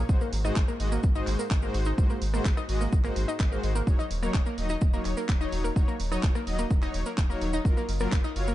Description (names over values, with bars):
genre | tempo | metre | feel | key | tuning
progressive house | 127 BPM | 4/4 | straight | unclear | A4 = 440 Hz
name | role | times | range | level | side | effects
round analog bass | bass | 0.0-8.5 s | Eb1 to Ab1 | -31 LUFS | equal | tube saturation, sidechain pumping
soft supersaw | stabs | 0.1-8.5 s | Ab2 to Eb5 | -33 LUFS | left 2 dB | sidechain pumping, tape echo
electronic kick drum | drums | 0.1-8.2 s | none | -24 LUFS | equal | none
cabasa | percussion | 0.1-8.5 s | none | -46 LUFS | right 3 dB | none
analog pluck | arpeggios | 0.2-8.5 s | Bb3 to Eb5 | -34 LUFS | equal | chorus, sidechain pumping, tape echo
house drum kit | drums | 0.3-8.5 s | handclaps, hi-hat, rim click | -39 LUFS | right 1 dB | none
room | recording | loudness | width
little or no reverb | dark, warm production, nothing above 10.5 kHz | -24 LUFS | side -14 dB against mid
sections
0.0-8.5 A section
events
none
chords
0.1 Ab7; 3.9 Ebm7; 7.7 Gbmaj7